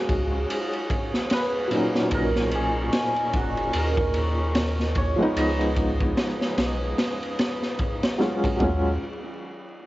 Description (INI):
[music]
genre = trip hop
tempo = 74 BPM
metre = 4/4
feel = swing 59% on 16ths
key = Eb minor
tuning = A4 = 440 Hz
[part]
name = cimbalom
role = melody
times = 0.0-7.8 s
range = Gb4 to Eb5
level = -29 LUFS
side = right 1 dB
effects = cassette tape, tape echo
[part]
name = felt-muted upright piano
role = accompaniment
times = 0.0-8.9 s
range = Bb2 to F5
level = -27 LUFS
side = equal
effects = tremolo, cassette tape
[part]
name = warbly tape-like pad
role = sustained chords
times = 0.0-9.0 s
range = Eb3 to Eb6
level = -35 LUFS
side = left 1 dB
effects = chorus, built-in reverb, cassette tape
[part]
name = wind-like tuned noise texture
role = texture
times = 0.0-8.6 s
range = Db4 to Db5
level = -39 LUFS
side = equal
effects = built-in reverb, cassette tape
[part]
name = soft dub sub bass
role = bass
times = 0.1-9.0 s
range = F#1 to D#2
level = -27 LUFS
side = equal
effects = none
[part]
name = raw garage drum kit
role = drums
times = 0.1-8.8 s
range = kick drum, ride cymbal, snare drum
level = -26 LUFS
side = equal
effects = cassette tape
[sound]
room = small room ambience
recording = home recording on cassette, vinyl crackle, nothing above 7.7 kHz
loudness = -22 LUFS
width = side -17 dB against mid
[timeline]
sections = 0.0-8.6 A section; 8.6-9.9 B section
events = none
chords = 0.0 Ebm11; 2.1 Bmaj9; 5.4 Db9; 8.6 Ebm11